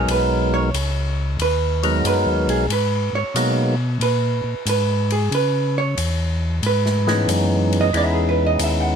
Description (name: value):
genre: soul jazz organ trio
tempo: 92 BPM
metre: 4/4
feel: swing 67% on 8ths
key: G# minor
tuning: A4 = 440 Hz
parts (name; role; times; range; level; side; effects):
- percussive tonewheel organ; melody; 0.0-9.0 s; E3 to A#4; -20 LUFS; equal; slow rotary speaker, overdrive
- vintage hollow-body jazz guitar; accompaniment; 0.0-9.0 s; G#4 to F#5; -23 LUFS; right 4 dB; none
- mellow tonewheel organ; bass; 0.0-9.0 s; B1 to C#3; -21 LUFS; left 1 dB; slow rotary speaker
- swinging big-band drum kit; drums; 0.1-8.8 s; hi-hat, ride cymbal, snare drum; -28 LUFS; left 4 dB; none
room: little or no reverb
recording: close, detailed microphones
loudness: -17 LUFS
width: side -7 dB against mid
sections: 0.0-9.0 A section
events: hollow-body jazz guitar solo 0.0-9.0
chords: 0.0 G#m9; 5.3 C#m9